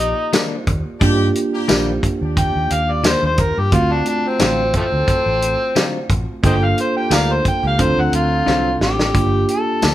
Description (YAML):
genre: straight-eighth soul blues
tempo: 88 BPM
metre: 4/4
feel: swing 55% on 16ths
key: G minor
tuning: A4 = 440 Hz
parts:
  - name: overdriven harmonica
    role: melody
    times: 0.0-9.9 s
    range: E#3 to G5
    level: -19 LUFS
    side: left 1 dB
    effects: none
  - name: bell-like tine electric piano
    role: accompaniment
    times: 0.0-9.9 s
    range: A3 to D5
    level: -22 LUFS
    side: right 3 dB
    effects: none
  - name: bright horn section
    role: sustained chords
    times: 0.0-8.9 s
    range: F#3 to E#5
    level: -29 LUFS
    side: left 1 dB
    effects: none
  - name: vintage muted fingered electric bass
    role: bass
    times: 0.0-9.9 s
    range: G1 to G2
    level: -21 LUFS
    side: equal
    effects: none
  - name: warm soul drum kit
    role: drums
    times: 0.0-9.9 s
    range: hi-hat, kick drum, snare drum, tambourine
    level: -19 LUFS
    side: equal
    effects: none
  - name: direct-recorded clean electric guitar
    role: stabs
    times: 0.3-9.9 s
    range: G2 to Bb4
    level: -23 LUFS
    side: left 4 dB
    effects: none
room: moderate large studio reverb, RT60 1.2 s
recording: band playing live in one room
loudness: -15 LUFS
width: side -13 dB against mid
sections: 0.0-9.2 A section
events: harmonica solo 0.0-9.2; drum fill 8.5-9.2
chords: 0.0 Ebmaj7; 3.7 D7#9; 6.4 Gm7; 7.8 D7#9; 9.2 Gm7